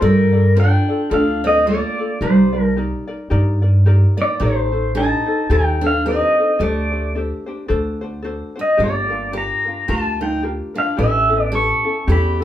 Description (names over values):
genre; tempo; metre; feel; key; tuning
Hawaiian; 109 BPM; 4/4; swing 59% on 8ths; G minor; A4 = 438 Hz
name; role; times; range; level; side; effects
pedal steel guitar; melody; 0.0-12.4 s; Bb4 to C#6; -19 LUFS; left 1 dB; none
picked steel-string acoustic guitar; second line; 0.0-12.4 s; G3 to A4; -21 LUFS; right 2 dB; none
ukulele; accompaniment; 0.0-12.4 s; C#4 to D5; -24 LUFS; left 3 dB; none
upright bass; bass; 0.0-12.4 s; G1 to G2; -18 LUFS; equal; none
room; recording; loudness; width
wet studio ambience, RT60 0.5 s; band playing live in one room; -15 LUFS; side -12 dB against mid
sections
0.0-12.4 A section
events
none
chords
0.0 Gm9; 2.2 Cm9; 4.4 Am7b5; 6.6 D7sus4; 7.7 D7; 8.8 Gm7; 11.0 A7